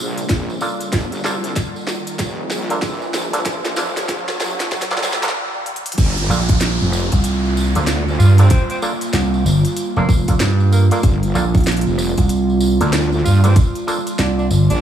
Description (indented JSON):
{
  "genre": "glitch hop",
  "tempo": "95 BPM",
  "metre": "4/4",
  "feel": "swing 62% on 16ths",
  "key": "G minor",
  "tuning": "A4 = 440 Hz",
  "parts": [
    { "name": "warbly tape-like pad", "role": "sustained chords", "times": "0.0-14.8 s", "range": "G3 to F4", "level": "-25 LUFS", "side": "right 2 dB", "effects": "chorus, built-in reverb, sidechain pumping" },
    { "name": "wobble bass", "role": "bass", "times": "0.0-14.8 s", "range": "F1 to G2", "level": "-17 LUFS", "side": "right 1 dB", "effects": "chorus, overdrive, high-pass filter" },
    { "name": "riser and downlifter", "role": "sound effects", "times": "0.0-11.0 s", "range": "none", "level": "-27 LUFS", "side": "right 1 dB", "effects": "none" },
    { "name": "drum and bass drum kit", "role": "drums", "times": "0.2-14.8 s", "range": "crash cymbal, hi-hat, rim click, snare drum", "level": "-24 LUFS", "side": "equal", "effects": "studio reverb" },
    { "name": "tambourine", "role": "percussion", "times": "0.2-14.8 s", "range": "none", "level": "-32 LUFS", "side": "right 2 dB", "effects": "none" },
    { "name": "electronic kick drum", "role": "drums", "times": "0.3-13.7 s", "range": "none", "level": "-15 LUFS", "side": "equal", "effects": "studio reverb" },
    { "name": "auto-wah clav", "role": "stabs", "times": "0.6-14.0 s", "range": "Bb3 to A4", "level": "-27 LUFS", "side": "right 1 dB", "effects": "overdrive, sidechain pumping, low-pass filter, dub echo" },
    { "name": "vintage slap bass", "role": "bass", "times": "6.3-14.7 s", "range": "F1 to G2", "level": "-16 LUFS", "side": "right 1 dB", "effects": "tube saturation" },
    { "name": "clear tenor saxophone", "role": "melody", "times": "8.2-14.8 s", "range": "Bb3 to F4", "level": "-28 LUFS", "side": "right 2 dB", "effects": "dub echo" }
  ],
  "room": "light reverb",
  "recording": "high-pass filter, studio ambience",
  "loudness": "-15 LUFS",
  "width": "side -10 dB against mid",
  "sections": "0.0-6.0 A section; 6.0-14.8 B section",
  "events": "build-up 0.0-6.0; drum fill 0.0-5.3, 5.7-6.0; riser 0.0-5.3; filter sweep on clav 0.0-6.0; filter sweep on ambient pad 0.0-6.0; filter sweep 0.0-6.0; stop 5.3-6.0; drop 6.0-14.8",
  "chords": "0.0 Gm7"
}